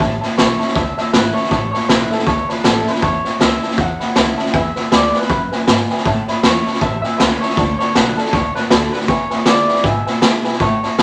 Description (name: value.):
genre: rockabilly.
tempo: 158 BPM.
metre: 4/4.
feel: swing 58% on 8ths.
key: A major.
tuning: A4 = 438 Hz.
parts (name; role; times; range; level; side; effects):
picked steel-string acoustic guitar; accompaniment; 0.0-11.0 s; E2 to F#4; -28 LUFS; equal; none.
warm upright piano; accompaniment; 0.0-11.0 s; B4 to B5; -27 LUFS; equal; none.
upright bass; bass; 0.0-11.0 s; G#1 to B2; -27 LUFS; equal; none.
raw garage drum kit; drums; 0.0-11.0 s; hi-hat, kick drum, snare drum; -18 LUFS; equal; none.
electric guitar through a small old amp; melody; 0.4-11.0 s; A4 to F#5; -23 LUFS; equal; none.
room: light reverb.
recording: none.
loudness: -16 LUFS.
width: mono.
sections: 0.0-11.0 A section.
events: none.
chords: 0.0 A; 4.5 E7; 6.1 A; 7.6 D; 9.1 E7.